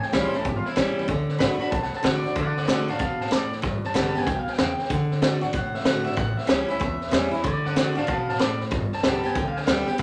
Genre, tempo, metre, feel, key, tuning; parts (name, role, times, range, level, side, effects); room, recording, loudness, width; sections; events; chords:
rockabilly; 189 BPM; 4/4; swing 64% on 8ths; D major; A4 = 443 Hz
electric guitar through a small old amp; melody; 0.0-10.0 s; E4 to B5; -32 LUFS; equal
picked steel-string acoustic guitar; accompaniment; 0.0-10.0 s; E2 to G4; -28 LUFS; equal
upright bass; bass; 0.0-10.0 s; G1 to B2; -37 LUFS; equal
vintage drum kit; drums; 0.0-10.0 s; hi-hat, kick drum, snare drum; -28 LUFS; equal
moderate large studio reverb, RT60 0.9 s; -24 LUFS; mono
0.0-2.4 A section; 2.4-10.0 B section
0.0 A7; 1.1 D; 3.6 G; 4.9 D; 6.2 A7; 7.4 D; 8.7 G